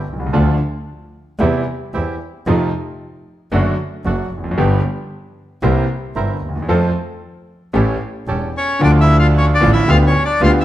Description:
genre	tango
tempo	113 BPM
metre	4/4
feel	rubato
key	F major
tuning	A4 = 440 Hz
part	clear concert grand piano	accompaniment	0.0-10.6 s	E1 to A4	-18 LUFS	equal	none
part	bandoneon	stabs	0.0-10.6 s	A3 to Bb4	-26 LUFS	right 4 dB	none
part	clear double bass	bass	0.1-10.6 s	E1 to F2	-18 LUFS	equal	none
part	bandoneon	melody	8.6-10.6 s	C#4 to F5	-16 LUFS	left 1 dB	none
room	moderate large studio reverb, RT60 1.4 s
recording	none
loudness	-14 LUFS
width	side -13 dB against mid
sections	0.0-8.8 A section; 8.8-10.6 B section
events	none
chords	0.3 Dm; 1.4 C/E; 2.5 F7; 3.5 D/F#; 4.6 G; 5.6 C7; 6.7 F; 7.7 A7; 8.8 Dm; 9.9 G7/D

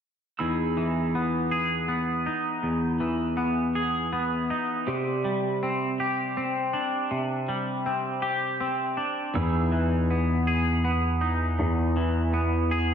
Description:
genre	rock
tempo	54 BPM (dotted quarters)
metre	6/8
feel	straight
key	unclear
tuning	A4 = 440 Hz
part	pedal steel guitar	sustained chords	0.4-12.9 s	D#4 to E6	-34 LUFS	right 4 dB	lush chorus
part	twangy electric guitar	arpeggios	0.4-12.9 s	E2 to G#4	-25 LUFS	equal	analog chorus, slapback echo
part	dark baby grand piano	bass	9.3-12.9 s	E2	-25 LUFS	equal	none
room	wet lush hall reverb, RT60 1.6 s, small room ambience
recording	big arena sound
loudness	-24 LUFS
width	side -8 dB against mid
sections	0.4-12.9 A section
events	none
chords	0.4 Emaj7; 4.9 Csus2; 9.4 Emaj7

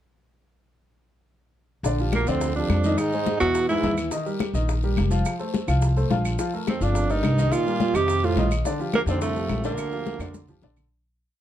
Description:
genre	Afro-Cuban jazz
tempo	212 BPM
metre	4/4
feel	straight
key	Bb major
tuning	A4 = 440 Hz
part	upright bass	bass	1.8-10.9 s	F1 to F2	-24 LUFS	equal	none
part	bongos	percussion	1.8-10.8 s	none	-36 LUFS	left 8 dB	none
part	congas	percussion	1.8-10.8 s	none	-29 LUFS	left 3 dB	none
part	guiro	percussion	1.8-10.9 s	none	-43 LUFS	left 7 dB	none
part	maracas	percussion	1.8-10.9 s	none	-42 LUFS	right 4 dB	none
part	clear concert grand piano	accompaniment	1.9-10.9 s	D3 to F5	-28 LUFS	left 2 dB	none
part	warm tenor saxophone	melody	2.1-4.0, 6.7-10.6 s	A3 to G4	-25 LUFS	right 3 dB	none
part	breathy baritone saxophone	second line	2.1-4.0, 6.7-10.6 s	C2 to C3	-30 LUFS	right 4 dB	none
part	claves	percussion	2.1-10.9 s	none	-39 LUFS	right 3 dB	none
room	light reverb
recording	dark, warm production, faint mains hum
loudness	-21 LUFS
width	side -11 dB against mid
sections	1.8-10.9 A section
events	fade-out 9.1-10.9; drum fill 10.2-10.9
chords	1.8 Bb69; 3.0 Emaj7#5; 3.5 E; 4.1 Ebadd9; 5.3 F; 6.4 Bb5; 7.0 Gm7; 7.5 F9sus4; 8.1 F7; 8.6 Bb69

